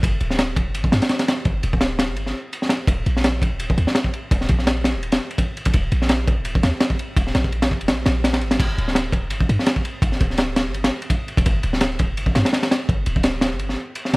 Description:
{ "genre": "drum and bass, jungle", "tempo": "168 BPM", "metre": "4/4", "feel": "swing 54% on 16ths", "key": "G minor", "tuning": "A4 = 440 Hz", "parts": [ { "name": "warm 808-style bass", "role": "bass", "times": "0.0-14.2 s", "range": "D1 to G2", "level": "-22 LUFS", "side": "equal", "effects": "tube saturation" }, { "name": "crunchy breakbeat drum kit", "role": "drums", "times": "0.0-14.2 s", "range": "crash cymbal, kick drum, ride cymbal, snare drum", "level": "-19 LUFS", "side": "equal", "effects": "none" } ], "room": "little or no reverb", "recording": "vinyl crackle", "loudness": "-18 LUFS", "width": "side -26 dB against mid", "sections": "0.0-8.6 A section; 8.6-14.2 A section", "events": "drop 0.0-8.6, 8.6-14.2; kick drops out 7.9-8.6", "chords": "none" }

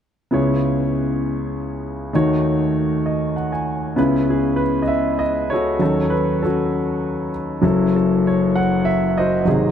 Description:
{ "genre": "folk", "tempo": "98 BPM", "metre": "3/4", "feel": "straight", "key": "C# minor", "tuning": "A4 = 439 Hz", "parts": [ { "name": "warm grand piano", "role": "melody", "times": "0.3-9.7 s", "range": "F#1 to G#5", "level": "-17 LUFS", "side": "equal", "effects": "tape echo" } ], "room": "light reverb", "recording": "close, detailed microphones", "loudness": "-17 LUFS", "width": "side -8 dB against mid", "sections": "0.3-4.0 A section; 4.0-9.7 B section", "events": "grand piano fill 2.7-4.0", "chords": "0.3 C#m7; 2.1 D#m7b5; 4.0 C#m7; 5.8 D#m7b5; 7.6 F#m7" }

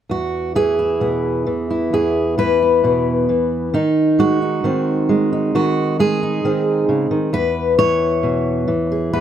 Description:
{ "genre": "folk, solo fingerstyle acoustic guitar", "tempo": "66 BPM", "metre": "4/4", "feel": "straight", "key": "E major", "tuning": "A4 = 440 Hz", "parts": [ { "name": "fingerpicked steel-string acoustic guitar", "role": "solo", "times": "0.1-9.2 s", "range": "E2 to C#5", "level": "-15 LUFS", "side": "equal", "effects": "none" } ], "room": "light reverb", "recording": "none", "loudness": "-15 LUFS", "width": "side -9 dB against mid", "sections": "0.1-9.2 A section", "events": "none", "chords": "0.1 E; 3.7 G#/D#; 7.3 E" }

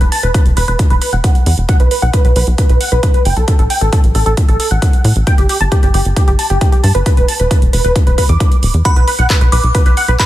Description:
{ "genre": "uplifting trance", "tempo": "134 BPM", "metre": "4/4", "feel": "straight", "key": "B minor", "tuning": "A4 = 440 Hz", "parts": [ { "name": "supersaw stab", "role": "melody", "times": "0.0-10.3 s", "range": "G4 to D6", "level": "-17 LUFS", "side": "equal", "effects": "phaser, sidechain pumping, low-pass filter, ping-pong delay" }, { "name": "tight sequencer bass", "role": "bass", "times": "0.0-10.2 s", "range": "D1 to A2", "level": "-13 LUFS", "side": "equal", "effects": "sidechain pumping" }, { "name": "techno drum kit", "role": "drums", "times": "0.0-10.3 s", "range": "handclaps, hi-hat", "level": "-22 LUFS", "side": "right 3 dB", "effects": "sidechain pumping on hats, studio reverb" }, { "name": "electronic kick drum", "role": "drums", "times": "0.3-10.3 s", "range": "none", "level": "-11 LUFS", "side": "equal", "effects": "studio reverb" }, { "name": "glassy synth bell", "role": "second line", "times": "8.9-10.3 s", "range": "B5 to D6", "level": "-18 LUFS", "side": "equal", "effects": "chorus, tremolo" } ], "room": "little or no reverb", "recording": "none", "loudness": "-10 LUFS", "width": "side -14 dB against mid", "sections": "0.0-10.3 A section", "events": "none", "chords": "0.0 E5; 1.7 B5; 3.5 F#m/A; 5.3 N.C.; 7.1 E5; 8.9 Bm" }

